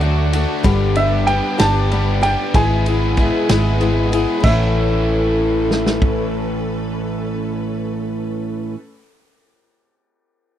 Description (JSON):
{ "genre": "folk rock and heartland rock", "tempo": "63 BPM (dotted quarters)", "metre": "6/8", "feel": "straight", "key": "A mixolydian", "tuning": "A4 = 443 Hz", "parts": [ { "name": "warm baby grand piano", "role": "melody", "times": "0.0-8.7 s", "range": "D5 to A5", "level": "-22 LUFS", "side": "right 2 dB", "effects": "none" }, { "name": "picked old ladder-braced acoustic guitar", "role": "accompaniment", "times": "0.0-8.8 s", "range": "G2 to G#4", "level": "-22 LUFS", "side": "left 6 dB", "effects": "none" }, { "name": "warm studio string section", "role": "sustained chords", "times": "0.0-8.7 s", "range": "C#4 to B4", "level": "-29 LUFS", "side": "right 2 dB", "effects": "none" }, { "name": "crunchy overdriven guitar", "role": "riff", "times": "0.0-8.8 s", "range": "G2 to G#4", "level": "-22 LUFS", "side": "right 1 dB", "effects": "none" }, { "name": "hollow-body short-scale fingered electric bass", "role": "bass", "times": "0.0-8.7 s", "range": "G1 to D2", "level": "-19 LUFS", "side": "equal", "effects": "none" }, { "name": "vintage drum kit", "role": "drums", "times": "0.0-6.2 s", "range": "crash cymbal, kick drum, ride cymbal, snare drum", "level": "-22 LUFS", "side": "right 1 dB", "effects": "none" } ], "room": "small room ambience", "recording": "dry, close 1970s-style studio recording", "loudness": "-15 LUFS", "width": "side -11 dB against mid", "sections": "0.0-4.4 A section; 4.4-8.2 B section", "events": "none", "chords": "0.0 D; 0.6 G; 2.5 E/G#; 4.4 Aadd9" }